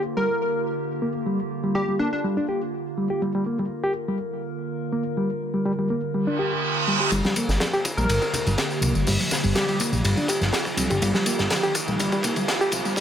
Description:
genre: breakbeat, breaks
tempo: 123 BPM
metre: 4/4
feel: straight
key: G minor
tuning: A4 = 440 Hz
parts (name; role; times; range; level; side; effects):
- warbly tape-like pad; sustained chords; 0.0-13.0 s; D3 to Bb4; -29 LUFS; right 2 dB; chorus, built-in reverb, sidechain pumping
- plucky unison lead; melody; 0.2-2.2, 8.0-9.8 s; D4 to Bb4; -27 LUFS; left 1 dB; small speaker sound, ping-pong delay
- bright reed electric piano; riff; 0.2-13.0 s; G3 to G4; -26 LUFS; equal; fast tremolo, tube saturation, low-pass filter, ping-pong delay
- reverse cymbal and riser; sound effects; 6.3-13.0 s; none; -29 LUFS; right 3 dB; none
- fat analog bass; bass; 7.1-13.0 s; G1 to C2; -24 LUFS; equal; none
- crunchy breakbeat drum kit; drums; 7.1-13.0 s; hi-hat, kick drum, ride cymbal, snare drum; -26 LUFS; equal; high-pass filter on kick, high-pass filter on cymbals, high-pass filter on hats, high-pass filter on snare, high-pass filter on room
- tambourine; drums; 7.1-13.0 s; none; -32 LUFS; left 3 dB; high-pass filter on perc, low-pass filter on perc
- congas; percussion; 7.2-13.0 s; none; -33 LUFS; right 2 dB; none
room: moderate small room reverb, RT60 0.6 s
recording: high-pass filter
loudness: -21 LUFS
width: side -9 dB against mid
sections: 0.0-7.1 A section; 7.1-13.0 B section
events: reverse cymbal 6.3-7.1; build-up 7.1-13.0; filter sweep on reed electric piano 7.1-13.0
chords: 0.0 Gm7

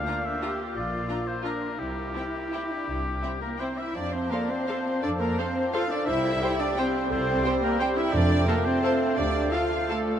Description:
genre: classical, orchestral ballroom waltz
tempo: 152-191 BPM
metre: 3/4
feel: rubato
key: F major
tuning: A4 = 440 Hz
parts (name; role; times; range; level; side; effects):
- clear oboe; second line; 0.0-10.2 s; G4 to F5; -32 LUFS; left 2 dB; none
- dark French horn section; sustained chords; 0.0-10.2 s; A3 to F4; -33 LUFS; equal; none
- warm symphonic cello section; bass; 0.0-10.2 s; A3 to G4; -31 LUFS; right 2 dB; none
- rich symphonic violin section; melody; 0.1-10.2 s; A4 to Bb5; -35 LUFS; equal; none
- warm symphonic violin section; second line; 0.1-10.0 s; E4 to A5; -36 LUFS; left 1 dB; none
- rich symphonic viola section; accompaniment; 0.1-10.0 s; C4 to C5; -38 LUFS; equal; none
- rich symphonic double bass section; bass; 0.8-9.5 s; Bb1 to F2; -32 LUFS; equal; none
- mellow concert flute; second line; 4.0-10.2 s; F5 to A5; -35 LUFS; right 2 dB; none
- warm bassoon; accompaniment; 4.0-10.1 s; F3 to A3; -32 LUFS; right 4 dB; none
- mellow clarinet; second line; 4.3-10.2 s; F4 to D5; -33 LUFS; left 3 dB; none
- timpani; percussion; 8.1-8.6 s; F2; -33 LUFS; right 1 dB; none
room: wet huge ambient reverb, RT60 9.0 s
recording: in a vast, echoing space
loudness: -24 LUFS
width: side -9 dB against mid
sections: 0.0-4.0 A section; 4.0-10.2 B section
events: none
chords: 0.0 Bb; 1.8 C; 4.0 F; 6.1 C; 8.1 F; 9.2 Dm

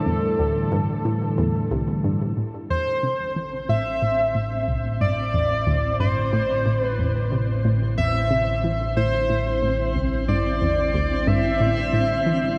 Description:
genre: ambient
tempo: 91 BPM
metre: 4/4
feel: straight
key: A minor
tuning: A4 = 444 Hz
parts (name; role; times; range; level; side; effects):
- pulse-width lead; melody; 0.0-12.6 s; A4 to E5; -27 LUFS; equal; chorus, delay
- sweeping resonant pad; sustained chords; 0.0-12.6 s; A2 to E4; -31 LUFS; equal; subtle chorus
- hollow square pluck; riff; 0.1-12.5 s; C2 to E3; -28 LUFS; equal; chorus, phaser, delay
- analog drone; bass; 3.9-12.6 s; A1; -29 LUFS; equal; chorus
- twinkling granular texture; texture; 3.3-12.6 s; C4; -35 LUFS; equal; built-in reverb
room: wet huge ambient reverb, RT60 7.4 s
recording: none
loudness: -22 LUFS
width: mono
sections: 0.0-2.4 A section; 2.4-12.6 B section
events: fade-in on analog synth pad 2.4-12.6; filter sweep on synth arpeggio sound 2.4-12.6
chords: 0.0 Am

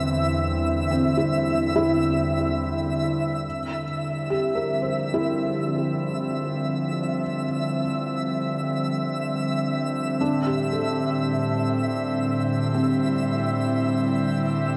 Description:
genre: ambient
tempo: free time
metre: none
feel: none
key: G dorian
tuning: A4 = 440 Hz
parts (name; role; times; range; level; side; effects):
- airy breathy pad; sustained chords; 0.0-14.8 s; E2 to E4; -27 LUFS; equal; chorus
- felt-muted upright piano; arpeggios; 0.0-14.8 s; E3 to C5; -30 LUFS; equal; diffuse ambient delay
- twinkling granular texture; texture; 0.0-14.8 s; E5 to E6; -32 LUFS; equal; built-in reverb
room: wet huge ambient reverb, RT60 7.7 s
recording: none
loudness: -24 LUFS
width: mono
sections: 0.0-3.4 A section; 3.4-14.8 B section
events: none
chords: 0.0 C/E; 3.4 Gm7; 10.2 Am7

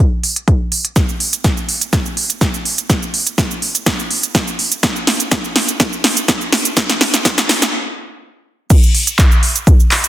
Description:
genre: house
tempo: 124 BPM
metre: 4/4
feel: straight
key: none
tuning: none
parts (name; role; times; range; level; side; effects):
- deep house drum kit; drums; 0.2-10.1 s; crash cymbal, handclaps, hi-hat, shaker, snare drum; -14 LUFS; right 1 dB; none
- electronic kick drum; drums; 0.5-9.8 s; none; -13 LUFS; equal; none
room: moderate digital room reverb, RT60 1.1 s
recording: dense, heavily limited modern master, high-pass filter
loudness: -12 LUFS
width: side -13 dB against mid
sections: 0.0-8.7 A section; 8.7-10.1 B section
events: build-up 0.0-8.7; filter sweep 0.0-8.7; drum fill 1.0-7.7; stop 7.7-8.7; drop 8.7-10.1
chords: none

